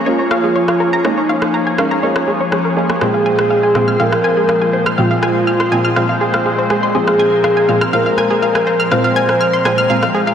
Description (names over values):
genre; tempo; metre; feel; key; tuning
melodic techno; 122 BPM; 4/4; straight; unclear; A4 = 438 Hz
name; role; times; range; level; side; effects
lush unison pad; sustained chords; 0.0-10.3 s; Bb2 to Db5; -19 LUFS; left 1 dB; chorus
synth brass stab; stabs; 0.0-10.3 s; Bb2 to Db4; -20 LUFS; right 2 dB; chorus, phaser, diffuse ambient delay
expressive portamento lead; melody; 0.1-10.3 s; Eb4 to C5; -16 LUFS; equal; chorus, tape echo
analog pluck; arpeggios; 0.1-10.3 s; Ab4 to F6; -18 LUFS; equal; chorus, diffuse ambient delay
electronic rim click; drums; 0.3-10.1 s; none; -24 LUFS; equal; none
room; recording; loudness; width
wet lush hall reverb, RT60 1.8 s, digital ambience; dreamy mix soaked in reverb; -12 LUFS; side -8 dB against mid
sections
0.0-10.3 A section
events
filter sweep on synth arpeggio sound 0.0-10.3; filter sweep on analog synth lead 0.0-10.3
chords
0.0 Bbm7; 3.0 Fm/Bb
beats
0.06 0.56 | 1.05 1.54 2.03 2.52 | 3.01 3.51 4.00 4.49 | 4.98 5.47 5.96 6.46 | 6.95 7.44 7.93 8.42 | 8.92 9.41 9.90